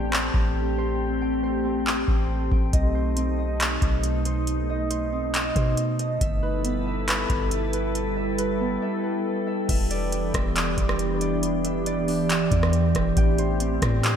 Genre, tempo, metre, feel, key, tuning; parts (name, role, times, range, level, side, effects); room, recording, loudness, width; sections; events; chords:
hip hop, atmospheric cloud-rap; 138 BPM; 4/4; half-time; E minor; A4 = 441 Hz
glassy FM pad; sustained chords; 0.0-14.2 s; B2 to B4; -26 LUFS; equal; ensemble chorus, built-in reverb, sidechain pumping
Celtic harp; arpeggios; 0.0-14.2 s; B3 to G5; -31 LUFS; right 2 dB; low-pass filter, ping-pong delay
soft 808-style bass; bass; 0.0-14.2 s; E1 to B2; -27 LUFS; equal
booming analog drum machine; drums; 0.1-14.1 s; crash cymbal, handclaps, hi-hat, kick drum, rim click; -25 LUFS; equal; overdrive, gated reverb
moderate lush hall reverb, RT60 1.9 s; bright 1980s-style digital production; -22 LUFS; side -8 dB against mid
0.0-9.7 A section; 9.7-14.2 B section
break 0.0-2.7; drums muted 8.8-9.7
0.0 Am7; 2.7 B7b9; 6.2 G69; 9.7 Em7; 13.2 Am7